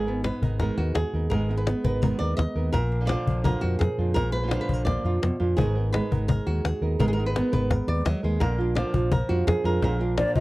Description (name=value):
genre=flamenco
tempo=169 BPM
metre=4/4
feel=straight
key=Bb phrygian dominant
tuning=A4 = 445 Hz
part: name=flamenco guitar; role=melody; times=0.0-10.4 s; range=Ab2 to Eb5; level=-28 LUFS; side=right 1 dB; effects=none
part: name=flamenco guitar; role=stabs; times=0.0-10.4 s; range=D3 to Bb4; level=-31 LUFS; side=right 3 dB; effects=none
part: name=mellow fretless electric bass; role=bass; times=0.0-10.4 s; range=Ab1 to F2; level=-26 LUFS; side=equal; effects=none
part: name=cajon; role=percussion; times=0.2-10.4 s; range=none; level=-26 LUFS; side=left 2 dB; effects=none
part: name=mellow silver concert flute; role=second line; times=10.2-10.4 s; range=D5 to Eb5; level=-24 LUFS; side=left 2 dB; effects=none
room=little or no reverb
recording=dry, close 1970s-style studio recording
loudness=-22 LUFS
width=side -19 dB against mid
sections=0.0-10.4 A section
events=none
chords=0.0 Abmadd9; 2.7 Bb; 5.6 Abmadd9; 8.4 Bb